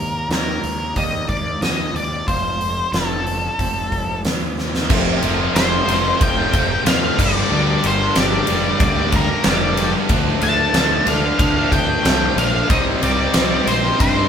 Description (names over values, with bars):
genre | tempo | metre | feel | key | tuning
quiet-loud alternative rock | 92 BPM | 4/4 | straight | unclear | A4 = 441 Hz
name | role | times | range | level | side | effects
octave-fuzz lead guitar | melody | 0.0-14.3 s | A4 to A5 | -21 LUFS | left 2 dB | distortion
picked swing-style acoustic guitar | arpeggios | 0.0-4.9 s | Eb3 to F4 | -35 LUFS | right 6 dB | none
fuzz picked electric bass | bass | 0.0-14.3 s | F1 to G2 | -24 LUFS | equal | overdrive
huge arena drum kit | drums | 0.3-14.2 s | crash cymbal, hi-hat, kick drum, ride cymbal, snare drum | -20 LUFS | equal | none
heavy high-gain guitar | riff | 4.9-14.3 s | F2 to D4 | -24 LUFS | equal | distortion
overdriven electric guitar | riff | 4.9-14.3 s | F2 to F4 | -24 LUFS | left 6 dB | none
tight distorted guitar | riff | 4.9-14.3 s | F2 to Eb4 | -25 LUFS | right 7 dB | distortion
room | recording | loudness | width
moderate large studio reverb, RT60 0.9 s | band playing live in one room | -15 LUFS | side -8 dB against mid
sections
0.0-4.9 A section; 4.9-14.3 B section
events
drum fill 4.6-4.9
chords
0.0 Eb; 2.3 F; 7.2 Gm; 10.1 Dm; 12.7 Cm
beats
0.30 0.96 1.62 | 2.28 2.94 3.59 4.25 | 4.90 5.55 6.20 6.86 | 7.50 8.15 8.80 9.45 | 10.10 10.75 11.40 12.05 | 12.71 13.36 14.01